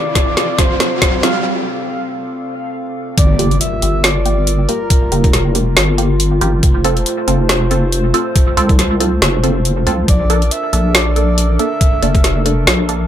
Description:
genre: deep dubstep.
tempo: 139 BPM.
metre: 4/4.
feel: swing 56% on 16ths, half-time.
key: G dorian.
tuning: A4 = 439 Hz.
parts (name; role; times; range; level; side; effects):
breathy flute-like synth lead; melody; 0.0-5.5, 10.1-12.4 s; Bb4 to F5; -22 LUFS; left 1 dB; chorus, dub echo.
dark analog pad; sustained chords; 0.0-13.1 s; G3 to F5; -22 LUFS; left 1 dB; wide subtle chorus.
filtered dub chord stab; stabs; 0.0-13.0 s; Bb3 to A4; -21 LUFS; right 2 dB; phaser, dub echo.
riser and impact; sound effects; 0.0-4.9 s; none; -21 LUFS; equal; none.
deep house drum kit; drums; 0.2-13.0 s; hi-hat, snare drum; -16 LUFS; equal; none.
electronic kick drum; drums; 0.2-12.2 s; none; -13 LUFS; equal; none.
deep soft wobble bass; bass; 3.2-13.1 s; F1 to C2; -15 LUFS; equal; chorus.
room: light reverb.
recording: none.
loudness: -12 LUFS.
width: side -10 dB against mid.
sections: 0.0-3.2 A section; 3.2-13.1 B section.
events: build-up 0.0-3.2; drum fill 0.0-1.4; riser 0.0-1.4; break 1.4-3.2; drop 3.2-13.1; impact 3.2-4.9.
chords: 0.0 F; 3.2 Gm7; 6.6 F; 10.1 Bbmaj7.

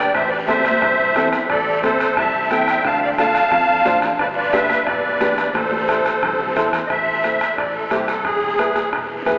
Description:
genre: latin, cumbia.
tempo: 178 BPM.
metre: 4/4.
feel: straight.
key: A minor.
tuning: A4 = 437 Hz.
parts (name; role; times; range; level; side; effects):
musette accordion; melody; 0.0-8.9 s; G4 to A5; -17 LUFS; equal; none.
warm upright piano; accompaniment; 0.0-9.4 s; C4 to C5; -23 LUFS; equal; none.
fingered electric bass; bass; 0.0-9.4 s; E1 to F2; -31 LUFS; equal; none.
bombo; percussion; 0.1-9.4 s; none; -23 LUFS; equal; none.
guiro; percussion; 0.1-9.4 s; none; -34 LUFS; equal; none.
congas; percussion; 0.5-9.4 s; none; -33 LUFS; equal; none.
room: wet cathedral reverb, RT60 5.8 s.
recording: recorded in a church or concert hall, telephone sound.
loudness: -15 LUFS.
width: side -34 dB against mid.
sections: 0.0-6.9 A section; 6.9-9.4 B section.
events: drum fill 0.5-1.5, 5.5-6.9; accordion solo 6.9-9.4.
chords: 0.1 Am; 2.8 Dm; 4.2 G; 5.5 Am; 8.3 E.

